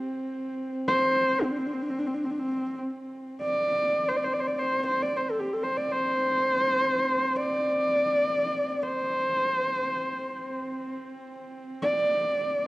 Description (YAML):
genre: mongolian traditional, Mongolian folk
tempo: free time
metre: none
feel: none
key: unclear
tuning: A4 = 443 Hz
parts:
  - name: warm horsehead fiddle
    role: drone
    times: 0.0-12.7 s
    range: C4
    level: -35 LUFS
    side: right 1 dB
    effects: stereo widening, cassette tape
  - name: dark horsehead fiddle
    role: melody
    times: 0.9-12.7 s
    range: C4 to D5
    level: -25 LUFS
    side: equal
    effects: cassette tape
room: wet spring reverb, RT60 2.6 s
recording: home recording on cassette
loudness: -24 LUFS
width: side -20 dB against mid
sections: 0.0-3.0 A section; 3.0-12.7 A section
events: none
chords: none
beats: free time